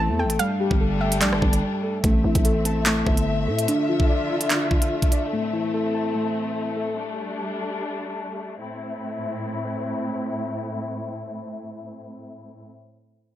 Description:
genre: hip hop, drill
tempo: 146 BPM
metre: 4/4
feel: half-time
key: A minor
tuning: A4 = 440 Hz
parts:
  - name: soft round pluck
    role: second line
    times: 0.0-2.0 s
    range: D5 to A5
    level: -28 LUFS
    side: right 3 dB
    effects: chorus, tape echo
  - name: dark symphonic string section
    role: sustained chords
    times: 0.0-12.7 s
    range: A2 to E5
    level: -28 LUFS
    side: left 2 dB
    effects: low-pass filter
  - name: muted felt-like synth keys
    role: arpeggios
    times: 0.0-7.0 s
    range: G3 to A5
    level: -24 LUFS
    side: left 1 dB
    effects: chorus, low-pass filter, tape echo
  - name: growling 808-style bass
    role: bass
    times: 0.0-3.7 s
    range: G1 to A2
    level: -25 LUFS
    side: equal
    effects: none
  - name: drill drum kit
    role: drums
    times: 0.3-5.2 s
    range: handclaps, hi-hat, kick drum, rim click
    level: -21 LUFS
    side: equal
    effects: none
room: light reverb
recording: none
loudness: -21 LUFS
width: side -12 dB against mid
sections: 0.0-2.0 A section; 2.0-8.6 B section; 8.6-11.9 C section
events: break 1.6-2.0; filter sweep 2.0-8.6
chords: 0.4 Gsus2; 2.0 Am; 3.7 Dmadd9; 5.3 Am; 7.0 Gsus2; 8.6 Am

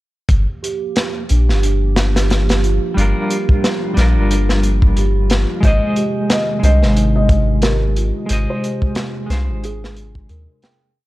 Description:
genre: trip hop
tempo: 90 BPM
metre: 4/4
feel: swing 57% on 16ths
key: G phrygian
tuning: A4 = 440 Hz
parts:
  - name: warbly tape-like pad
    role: sustained chords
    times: 0.6-10.9 s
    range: C3 to G4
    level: -25 LUFS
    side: equal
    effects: chorus, built-in reverb
  - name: soft dub sub bass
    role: bass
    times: 0.3-10.5 s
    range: G1 to Eb2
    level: -15 LUFS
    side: equal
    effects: none
  - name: crunchy breakbeat drum kit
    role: drums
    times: 0.3-10.8 s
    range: hi-hat, kick drum, snare drum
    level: -18 LUFS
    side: equal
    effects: none
  - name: large celesta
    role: arpeggios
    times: 0.6-11.0 s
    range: D4 to G5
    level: -27 LUFS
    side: right 5 dB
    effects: ping-pong delay
  - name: clean electric guitar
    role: accompaniment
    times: 2.9-10.9 s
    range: G3 to Eb5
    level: -22 LUFS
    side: equal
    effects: tremolo
  - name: felt-muted upright piano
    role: melody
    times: 5.6-10.1 s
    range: Ab4 to Eb5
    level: -23 LUFS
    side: equal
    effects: dub echo
room: small room ambience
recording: dark, warm production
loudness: -14 LUFS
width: side -17 dB against mid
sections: 0.3-11.0 groove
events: fade-out 7.4-11.0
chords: 0.3 Gm7; 5.6 Ab

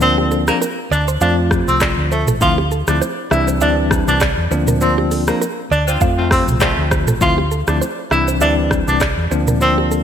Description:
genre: afrobeats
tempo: 100 BPM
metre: 4/4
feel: swing 55% on 16ths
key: F major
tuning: A4 = 440 Hz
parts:
  - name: clear tenor saxophone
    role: melody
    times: 0.0-9.8 s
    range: A3 to F4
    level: -19 LUFS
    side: equal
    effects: ping-pong delay
  - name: bell-like tine electric piano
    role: accompaniment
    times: 0.0-10.0 s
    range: E3 to F4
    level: -20 LUFS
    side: left 2 dB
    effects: fast stereo tremolo
  - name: hollow-body short-scale fingered electric bass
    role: bass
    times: 0.0-10.0 s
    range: A1 to F2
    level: -19 LUFS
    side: equal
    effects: none
  - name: afro-pop drum kit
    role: drums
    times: 0.0-10.0 s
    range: handclaps, hi-hat, kick drum, rim click, shaker, toms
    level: -20 LUFS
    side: equal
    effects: gated reverb
  - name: direct-recorded clean electric guitar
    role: riff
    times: 0.2-10.0 s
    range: G4 to F5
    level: -24 LUFS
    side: right 7 dB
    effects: ping-pong delay
  - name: bright horn section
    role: second line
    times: 5.9-6.8 s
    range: A3 to F4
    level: -23 LUFS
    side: left 1 dB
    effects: none
room: moderate lush hall reverb, RT60 1.7 s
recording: bright 1980s-style digital production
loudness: -14 LUFS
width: side -8 dB against mid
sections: 0.0-10.0 A section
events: band accent 4.8-7.2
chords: 0.0 Bbadd9/D; 1.2 F; 2.4 Dm7; 3.3 Cadd9; 4.5 Bbadd9/D; 6.0 F; 7.2 Dm7; 8.1 Cadd9; 9.3 Bbadd9/D

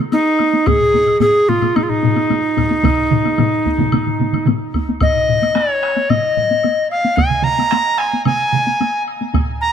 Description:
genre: japanese traditional, taiko drum ensemble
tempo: 111 BPM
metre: 4/4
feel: straight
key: Eb suspended pentatonic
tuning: A4 = 439 Hz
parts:
  - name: taiko ensemble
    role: percussion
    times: 0.0-9.5 s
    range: none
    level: -20 LUFS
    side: left 1 dB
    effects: none
  - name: bright reedy tenor recorder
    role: melody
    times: 0.1-9.7 s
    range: Eb4 to Bb5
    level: -15 LUFS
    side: equal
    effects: none
  - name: woodblock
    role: percussion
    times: 0.1-9.5 s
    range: none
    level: -32 LUFS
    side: left 2 dB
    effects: none
  - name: solo taiko drums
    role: percussion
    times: 0.7-9.5 s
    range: none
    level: -20 LUFS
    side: right 2 dB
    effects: none
  - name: taiko ensemble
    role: percussion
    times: 0.7-9.5 s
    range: none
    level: -21 LUFS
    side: left 7 dB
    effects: none
  - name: taiko ensemble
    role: percussion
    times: 2.8-8.7 s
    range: none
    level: -21 LUFS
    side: right 7 dB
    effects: none
room: moderate huge ambient reverb, RT60 7.4 s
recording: none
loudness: -13 LUFS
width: side -8 dB against mid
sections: 0.0-5.0 A section; 5.0-9.7 B section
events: none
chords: none

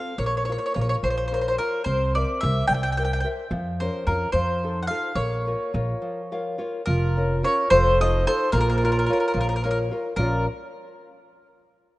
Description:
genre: italian folk, Italian serenade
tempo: 72 BPM (dotted quarters)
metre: 6/8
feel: rubato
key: Bb harmonic minor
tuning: A4 = 441 Hz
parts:
  - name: bowl-back mandolin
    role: melody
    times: 0.0-10.4 s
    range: Bb4 to G5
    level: -24 LUFS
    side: equal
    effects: none
  - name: nylon-string guitar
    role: accompaniment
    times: 0.0-10.5 s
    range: Bb2 to F5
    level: -29 LUFS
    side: left 2 dB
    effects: none
  - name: upright bass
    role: bass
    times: 0.2-10.5 s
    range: F1 to F2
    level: -24 LUFS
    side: equal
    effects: none
  - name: warm clarinet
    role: second line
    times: 6.9-10.5 s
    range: F4 to C5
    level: -30 LUFS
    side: right 3 dB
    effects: none
room: moderate lush hall reverb, RT60 2.9 s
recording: rough home demo mix, nothing above 10.4 kHz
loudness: -21 LUFS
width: side -18 dB against mid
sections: 0.0-6.9 A section; 6.9-10.2 B section; 10.2-11.8 C section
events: break 6.0-6.9; nylon-string guitar fill 6.0-6.9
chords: 0.2 Bbm; 1.9 C7; 3.5 Bbm/F; 4.3 F7; 5.2 Bbm; 6.9 Bbm/F; 7.7 F7; 8.5 Bbm

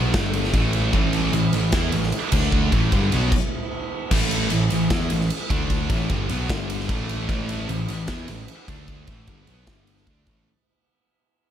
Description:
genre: hard rock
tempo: 151 BPM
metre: 4/4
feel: straight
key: unclear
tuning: A4 = 440 Hz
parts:
  - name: scooped high-gain guitar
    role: riff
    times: 0.0-10.5 s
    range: G2 to E4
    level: -30 LUFS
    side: left 10 dB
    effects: distortion
  - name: scooped high-gain guitar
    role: riff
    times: 0.0-10.5 s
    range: G2 to E4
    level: -29 LUFS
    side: right 9 dB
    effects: distortion
  - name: fuzz picked electric bass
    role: bass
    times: 0.0-10.5 s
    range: G1 to E2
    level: -25 LUFS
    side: equal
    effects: overdrive
  - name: big rock drum kit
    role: drums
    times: 0.1-10.4 s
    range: crash cymbal, kick drum, ride cymbal, snare drum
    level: -24 LUFS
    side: equal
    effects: none
  - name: sludgy distorted guitar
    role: riff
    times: 0.9-10.5 s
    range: G2 to E4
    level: -30 LUFS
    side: right 1 dB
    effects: overdrive
room: little or no reverb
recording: none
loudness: -20 LUFS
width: side -10 dB against mid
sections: 0.0-4.1 A section; 4.1-10.5 A section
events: stop 3.3-4.1; fade-out 4.1-10.5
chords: 0.1 G5; 0.5 A5; 2.3 D5; 2.7 A5; 3.3 N.C.; 4.1 A5; 5.5 D5; 5.9 A5; 6.5 G5; 6.9 A5; 8.7 D5; 9.1 A5; 9.7 G5; 10.1 A5

